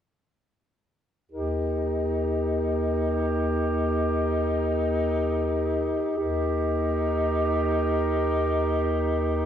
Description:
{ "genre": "classical, lyrical piece for single-reed quartet", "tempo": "free time", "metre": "none", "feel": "none", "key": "Eb major", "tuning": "A4 = 444 Hz", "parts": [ { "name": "mellow clarinet", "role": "melody", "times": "1.3-9.5 s", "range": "Bb4", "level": "-32 LUFS", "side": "left 4 dB", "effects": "none" }, { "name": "clear alto saxophone", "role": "second line", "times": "1.3-9.5 s", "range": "G4", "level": "-28 LUFS", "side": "right 3 dB", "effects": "none" }, { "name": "warm tenor saxophone", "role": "accompaniment", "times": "1.3-9.5 s", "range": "Eb4", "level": "-29 LUFS", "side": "left 3 dB", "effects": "none" }, { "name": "mellow bass clarinet", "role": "bass", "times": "1.3-9.5 s", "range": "Eb2", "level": "-28 LUFS", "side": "right 1 dB", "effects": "none" } ], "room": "moderate concert hall reverb, RT60 2.0 s", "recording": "heard from further back in the room", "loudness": "-23 LUFS", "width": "side -9 dB against mid", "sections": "1.3-9.5 A section", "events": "none", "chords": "1.3 Eb", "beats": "free time" }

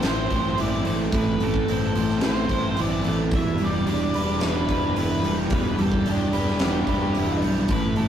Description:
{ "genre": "rock, shoegaze and dream pop", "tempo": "110 BPM", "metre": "4/4", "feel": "straight", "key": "unclear", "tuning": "A4 = 440 Hz", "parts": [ { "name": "octave-fuzz lead guitar", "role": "melody", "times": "0.0-8.1 s", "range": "G4 to E5", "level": "-32 LUFS", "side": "right 1 dB", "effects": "distortion" }, { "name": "twelve-string electric guitar", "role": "arpeggios", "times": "0.0-8.1 s", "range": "E3 to C4", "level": "-33 LUFS", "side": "right 4 dB", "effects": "none" }, { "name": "biting overdriven guitar", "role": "riff", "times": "0.0-8.1 s", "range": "A2 to C5", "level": "-26 LUFS", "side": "right 5 dB", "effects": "none" }, { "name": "thick fuzz guitar", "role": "riff", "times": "0.0-8.1 s", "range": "E2 to E4", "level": "-27 LUFS", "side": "left 4 dB", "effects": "distortion" }, { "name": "fuzz fingered electric bass", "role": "bass", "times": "0.0-8.1 s", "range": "E1 to B1", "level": "-28 LUFS", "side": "equal", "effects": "overdrive" }, { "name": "huge arena drum kit", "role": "drums", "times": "0.0-8.1 s", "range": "hi-hat, kick drum, snare drum", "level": "-27 LUFS", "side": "equal", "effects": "none" } ], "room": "wet stone room reverb, RT60 0.9 s", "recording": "rough rehearsal-room recording", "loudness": "-20 LUFS", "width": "side -9 dB against mid", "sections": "0.0-8.1 A section", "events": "none", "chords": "0.0 Am; 3.3 Em7", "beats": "0.05 0.60 | 1.15 1.69 2.24 2.79 | 3.33 3.88 4.42 4.97 | 5.51 6.06 6.61 7.15 | 7.70" }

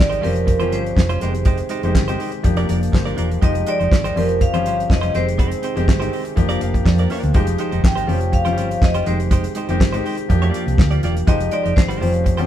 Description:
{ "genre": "disco", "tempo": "122 BPM", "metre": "4/4", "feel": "straight", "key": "unclear", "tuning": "A4 = 438 Hz", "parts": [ { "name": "vibraphone with medium hard mallets", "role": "melody", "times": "0.0-12.5 s", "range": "Bb4 to G5", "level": "-24 LUFS", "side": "right 1 dB", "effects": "none" }, { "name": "warm baby grand piano", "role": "accompaniment", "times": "0.0-12.5 s", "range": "Eb3 to F5", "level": "-25 LUFS", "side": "left 5 dB", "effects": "none" }, { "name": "mellow French horn section", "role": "sustained chords", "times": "0.0-12.5 s", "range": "C3 to C5", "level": "-28 LUFS", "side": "right 1 dB", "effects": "none" }, { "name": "hollow-body short-scale fingered electric bass", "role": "bass", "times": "0.0-12.5 s", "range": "E1 to F2", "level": "-21 LUFS", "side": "equal", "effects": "none" }, { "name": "damped 70s drum kit", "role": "drums", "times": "0.0-12.5 s", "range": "handclaps, hi-hat, kick drum, snare drum", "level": "-17 LUFS", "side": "equal", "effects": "none" }, { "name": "direct-recorded clean electric guitar", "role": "accompaniment", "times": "0.1-12.5 s", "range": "G3 to D5", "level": "-28 LUFS", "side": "right 4 dB", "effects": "none" } ], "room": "light reverb", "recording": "band playing live in one room", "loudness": "-16 LUFS", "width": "side -11 dB against mid", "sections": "0.0-12.5 A section", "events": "grand piano fill 6.4-7.3", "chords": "0.2 Bbm69/F; 1.2 Abmaj7/F; 2.4 Gm7/F; 3.4 Fm9; 4.2 Eb13/F; 5.1 Abmaj7/F; 6.4 Gm7/F; 7.3 Fm9; 8.1 Eb13/F; 9.1 Abmaj7/F; 10.3 Gm7; 11.3 Fm9", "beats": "0.48 0.97 | 1.46 1.95 2.44 2.93 | 3.42 3.91 4.40 4.89 | 5.38 5.88 6.37 6.86 | 7.35 7.84 8.33 8.82 | 9.31 9.80 10.29 10.78 | 11.28 11.77 12.26" }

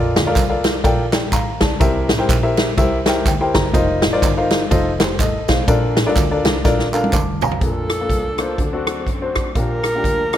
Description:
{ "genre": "uptempo gospel", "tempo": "124 BPM", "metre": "4/4", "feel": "swing 60% on 8ths", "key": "Bb major", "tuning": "A4 = 440 Hz", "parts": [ { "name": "warm baby grand piano", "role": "accompaniment", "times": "0.0-10.4 s", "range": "Bb2 to D6", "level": "-20 LUFS", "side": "left 2 dB", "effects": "none" }, { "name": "warm double bass", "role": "bass", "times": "0.0-10.4 s", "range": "F1 to F#2", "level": "-24 LUFS", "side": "equal", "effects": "none" }, { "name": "swinging big-band drum kit", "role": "drums", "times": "0.2-10.4 s", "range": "hi-hat, kick drum, ride cymbal, rim click, snare drum, toms", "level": "-18 LUFS", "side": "equal", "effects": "none" }, { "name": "tambourine and handclaps", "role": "percussion", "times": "0.2-7.5 s", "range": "none", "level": "-29 LUFS", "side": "right 5 dB", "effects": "none" }, { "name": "breathy alto saxophone", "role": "melody", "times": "7.6-10.4 s", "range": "A4 to Bb4", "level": "-22 LUFS", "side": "right 1 dB", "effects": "none" }, { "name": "clear studio string section", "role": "sustained chords", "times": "7.6-10.4 s", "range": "F3 to D4", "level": "-34 LUFS", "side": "left 1 dB", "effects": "none" } ], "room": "light reverb, small room reverb", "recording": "none", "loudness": "-15 LUFS", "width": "side -11 dB against mid", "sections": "0.0-7.6 A section; 7.6-10.4 B section", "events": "grand piano fill 2.8-3.7, 10.0-10.4; drum fill 6.6-7.6", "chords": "0.0 Bbmaj7; 1.8 C7; 3.7 F7sus4; 4.7 F7; 5.7 Bbmaj7; 8.6 D7; 9.6 Gm7/Bb", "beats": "0.36 0.84 1.33 | 1.81 2.29 2.78 3.26 | 3.74 4.23 4.71 5.19 | 5.68 6.16 6.64 7.13 | 7.62 8.10 8.59 9.07 | 9.56 10.05" }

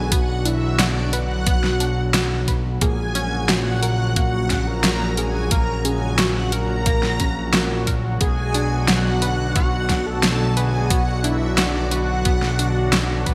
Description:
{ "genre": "synthwave", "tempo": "89 BPM", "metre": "4/4", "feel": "straight", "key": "B dorian", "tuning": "A4 = 439 Hz", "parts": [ { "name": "unison lead", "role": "melody", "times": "0.0-13.2 s", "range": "D4 to A#4", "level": "-30 LUFS", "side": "equal", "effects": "digital delay" }, { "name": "string machine, violins", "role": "second line", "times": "0.0-13.2 s", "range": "D5 to A#5", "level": "-32 LUFS", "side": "equal", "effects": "ensemble chorus, delay" }, { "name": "lush unison pad", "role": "sustained chords", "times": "0.0-13.3 s", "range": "A#2 to F#4", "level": "-30 LUFS", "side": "equal", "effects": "chorus, sidechain pumping" }, { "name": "fat analog bass", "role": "bass", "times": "0.0-13.3 s", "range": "A#1 to B1", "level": "-25 LUFS", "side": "equal", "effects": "none" }, { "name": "analog pluck", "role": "arpeggios", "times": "0.1-13.3 s", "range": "A#3 to B4", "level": "-33 LUFS", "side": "equal", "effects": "chorus, cassette tape, delay" }, { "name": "electronic kick drum", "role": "drums", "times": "0.1-13.3 s", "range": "none", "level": "-24 LUFS", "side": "equal", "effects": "overdrive" }, { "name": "pop drum kit", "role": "drums", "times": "0.1-13.3 s", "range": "hi-hat, snare drum", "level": "-24 LUFS", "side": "equal", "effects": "overdrive, gated reverb" } ], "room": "moderate lush hall reverb, RT60 1.9 s, digital ambience", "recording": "bright 1980s-style digital production", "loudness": "-20 LUFS", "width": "mono", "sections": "0.0-13.3 A section", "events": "none", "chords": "0.0 Bm; 2.8 F#/A#; 8.2 Bm", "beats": "| 0.12 0.79 1.47 2.14 | 2.82 3.49 4.17 4.84 | 5.51 6.19 6.86 7.54 | 8.21 8.88 9.56 10.23 | 10.91 11.58 12.26 12.93" }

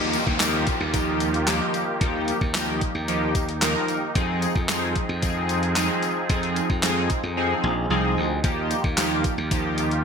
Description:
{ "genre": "dance-pop", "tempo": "112 BPM", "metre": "4/4", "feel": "straight", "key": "Eb major", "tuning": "A4 = 440 Hz", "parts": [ { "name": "chorused polysynth", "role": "accompaniment", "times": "0.0-9.9 s", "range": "F3 to Bb4", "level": "-25 LUFS", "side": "equal", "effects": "sidechain pumping" }, { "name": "filtered supersaw swell", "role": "sustained chords", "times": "0.0-10.0 s", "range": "Eb3 to Ab4", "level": "-30 LUFS", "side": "right 1 dB", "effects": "sidechain pumping" }, { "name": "glassy slap bass", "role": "bass", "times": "0.0-10.0 s", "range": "Bb1 to F2", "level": "-27 LUFS", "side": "equal", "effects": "sidechain pumping" }, { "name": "downlifter", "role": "sound effects", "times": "0.0-4.2 s", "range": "none", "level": "-32 LUFS", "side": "equal", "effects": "none" }, { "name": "gated 80s digital drum machine", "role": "drums", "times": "0.1-10.0 s", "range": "handclaps, hi-hat, kick drum, snare drum", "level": "-26 LUFS", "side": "equal", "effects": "gated reverb, gated reverb snare" }, { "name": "tambourine", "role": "percussion", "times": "0.1-9.9 s", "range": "none", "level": "-37 LUFS", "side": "left 12 dB", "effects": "none" } ], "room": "moderate plate reverb, RT60 1.5 s, digital ambience", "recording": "bright 1980s-style digital production", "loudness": "-21 LUFS", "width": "side -6 dB against mid", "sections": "0.0-10.0 A section", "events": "silent gap 7.4-8.4", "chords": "0.0 Ebadd9; 4.2 Fm7; 8.4 Ebadd9", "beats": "0.40 0.94 1.47 | 2.01 2.54 3.08 3.62 | 4.15 4.69 5.22 5.76 | 6.29 6.83 7.37 7.90 | 8.44 8.97 9.51" }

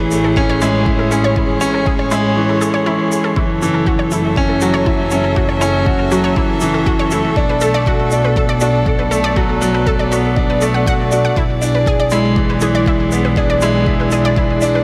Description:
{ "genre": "piano and strings electronica", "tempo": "120 BPM", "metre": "4/4", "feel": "straight", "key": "F# minor", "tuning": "A4 = 438 Hz", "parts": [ { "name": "muted string quartet", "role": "sustained chords", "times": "0.0-14.8 s", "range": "B2 to E5", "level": "-24 LUFS", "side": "equal", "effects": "sidechain pumping, shimmer reverb" }, { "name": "clear baby grand piano", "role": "riff", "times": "0.0-14.8 s", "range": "E3 to A4", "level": "-18 LUFS", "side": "equal", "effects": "delay, shimmer reverb" }, { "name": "warm studio double bass section", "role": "bass", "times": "0.0-14.8 s", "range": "F#1 to B1", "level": "-22 LUFS", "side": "equal", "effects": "sidechain pumping" }, { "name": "shaker", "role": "drums", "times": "0.1-14.7 s", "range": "none", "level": "-32 LUFS", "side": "equal", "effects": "none" }, { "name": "analog pluck", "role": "arpeggios", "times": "0.2-14.8 s", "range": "E4 to F#5", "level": "-25 LUFS", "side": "equal", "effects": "chorus, sidechain pumping, delay, shimmer reverb" }, { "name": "electronic kick drum", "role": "drums", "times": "0.4-14.5 s", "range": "none", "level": "-21 LUFS", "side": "equal", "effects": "none" } ], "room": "moderate concert hall reverb, RT60 2.2 s", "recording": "none", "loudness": "-15 LUFS", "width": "mono", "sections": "0.0-14.8 A section", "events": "none", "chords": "0.0 Amaj7; 3.4 F#m7; 7.4 Bm7; 11.4 E7/B", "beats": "0.37 0.87 | 1.37 1.87 2.37 2.87 | 3.37 3.87 4.37 4.87 | 5.37 5.87 6.37 6.87 | 7.37 7.87 8.37 8.87 | 9.37 9.87 10.37 10.87 | 11.37 11.87 12.37 12.87 | 13.37 13.87 14.37" }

